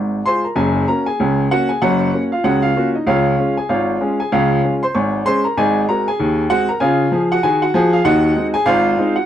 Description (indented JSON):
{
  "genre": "ragtime piano",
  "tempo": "96 BPM",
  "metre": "2/4",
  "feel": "swing 60% on 16ths",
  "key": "Db major",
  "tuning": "A4 = 440 Hz",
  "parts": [
    { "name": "warm upright piano", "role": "solo", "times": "0.0-9.3 s", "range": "Gb1 to Db6", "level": "-14 LUFS", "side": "equal", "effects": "none" }
  ],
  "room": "moderate studio reverb, RT60 0.5 s",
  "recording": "none",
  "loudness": "-14 LUFS",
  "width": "side -10 dB against mid",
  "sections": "0.6-9.3 A section",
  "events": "none",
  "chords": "0.0 Db (rootless); 0.6 Gb; 3.1 Db; 5.6 Ab7; 6.8 Db; 8.1 Ab7"
}